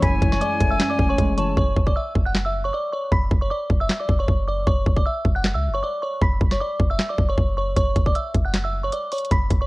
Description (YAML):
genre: hip hop, trap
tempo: 155 BPM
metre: 4/4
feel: half-time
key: F# minor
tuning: A4 = 440 Hz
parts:
  - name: delicate synth tine bell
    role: melody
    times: 0.0-9.7 s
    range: C#5 to B6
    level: -25 LUFS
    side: right 1 dB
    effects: chorus, low-pass filter
  - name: breathy jazz flute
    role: second line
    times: 0.0-1.6 s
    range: G#5 to A5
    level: -27 LUFS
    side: left 3 dB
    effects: ping-pong delay
  - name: muted felt-like synth keys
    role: accompaniment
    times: 0.0-1.6 s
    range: F#2 to C#4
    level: -25 LUFS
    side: equal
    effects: chorus, low-pass filter
  - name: dark symphonic string section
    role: sustained chords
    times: 0.0-1.5 s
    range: E3 to C#5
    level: -33 LUFS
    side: left 2 dB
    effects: none
  - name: warm 808-style bass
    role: bass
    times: 0.0-9.7 s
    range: F#1 to C#2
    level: -23 LUFS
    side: equal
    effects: none
  - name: trap drum kit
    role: drums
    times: 0.0-9.6 s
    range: handclaps, hi-hat, kick drum, snare drum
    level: -21 LUFS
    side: equal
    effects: none
room: digital ambience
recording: worn, warbling old tape, cassette tape, warbly pitch drift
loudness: -19 LUFS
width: side -21 dB against mid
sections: 0.0-1.6 A section; 1.6-9.7 B section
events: break 1.6-7.8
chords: 0.0 Amaj7/F#; 1.6 F#5; 3.1 Dmaj13/F#; 7.8 F#5